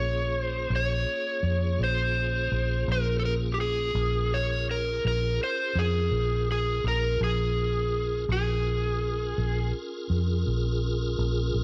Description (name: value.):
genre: slow blues.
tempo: 55 BPM (dotted quarters).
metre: 12/8.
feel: straight.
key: Bb minor.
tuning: A4 = 441 Hz.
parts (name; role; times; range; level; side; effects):
overdriven slide guitar; melody; 0.0-9.7 s; G4 to Db5; -31 LUFS; equal; none.
tonewheel organ; sustained chords; 0.0-11.6 s; Bb3 to Bb4; -38 LUFS; equal; slow rotary speaker, overdrive, chorus vibrato.
vintage muted fingered electric bass; bass; 0.0-11.6 s; Bb1 to F2; -30 LUFS; equal; none.
room: light reverb.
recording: none.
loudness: -27 LUFS.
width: mono.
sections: 0.0-11.6 A section.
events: none.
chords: 0.0 Bbm7.